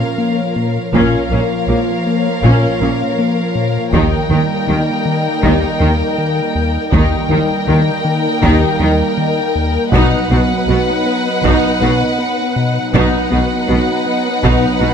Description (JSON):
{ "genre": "cinematic, hybrid orchestral and electronic film score", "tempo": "80 BPM", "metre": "4/4", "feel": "straight", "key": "unclear", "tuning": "A4 = 440 Hz", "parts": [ { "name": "rich symphonic violin section", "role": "melody", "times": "0.0-14.9 s", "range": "F5 to G5", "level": "-22 LUFS", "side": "left 1 dB", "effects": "none" }, { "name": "warm symphonic violin section", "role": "second line", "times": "0.0-14.9 s", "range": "Bb4 to B4", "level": "-22 LUFS", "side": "left 4 dB", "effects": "none" }, { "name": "hollow soft pad", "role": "sustained chords", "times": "0.0-14.9 s", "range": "F3 to Eb5", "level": "-20 LUFS", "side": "right 1 dB", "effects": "chorus" }, { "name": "harp-like synth pluck", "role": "arpeggios", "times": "0.0-14.9 s", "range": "Eb3 to F#4", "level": "-26 LUFS", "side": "right 6 dB", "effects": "none" }, { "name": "fat analog bass", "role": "riff", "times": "0.0-14.9 s", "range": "Eb2 to B3", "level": "-19 LUFS", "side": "left 3 dB", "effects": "none" }, { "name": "rich symphonic viola section", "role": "accompaniment", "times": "0.9-14.9 s", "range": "Bb3 to Eb4", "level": "-22 LUFS", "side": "equal", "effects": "none" }, { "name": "dark French horn section", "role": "sustained chords", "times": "0.9-14.7 s", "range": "Bb3 to G4", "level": "-24 LUFS", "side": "left 4 dB", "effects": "none" }, { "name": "clear symphonic cello section", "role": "bass", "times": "0.9-14.9 s", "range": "Bb2 to Eb3", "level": "-19 LUFS", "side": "right 2 dB", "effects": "none" }, { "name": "clear symphonic double bass section", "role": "bass", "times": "0.9-14.9 s", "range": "Bb1 to Eb2", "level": "-20 LUFS", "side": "right 2 dB", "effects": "none" }, { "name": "taiko ensemble", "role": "drums", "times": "0.9-14.9 s", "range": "none", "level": "-20 LUFS", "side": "equal", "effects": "none" } ], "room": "light reverb", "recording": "close, detailed microphones", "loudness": "-12 LUFS", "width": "side -7 dB against mid", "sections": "0.0-14.9 A section", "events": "none", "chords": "0.0 Bbm; 3.9 Eb; 9.9 B", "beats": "0.19 | 0.94 1.69 2.44 3.19 | 3.94 4.69 5.44 6.19 | 6.94 7.69 8.44 9.19 | 9.94 10.69 11.44 12.19 | 12.94 13.69 14.44" }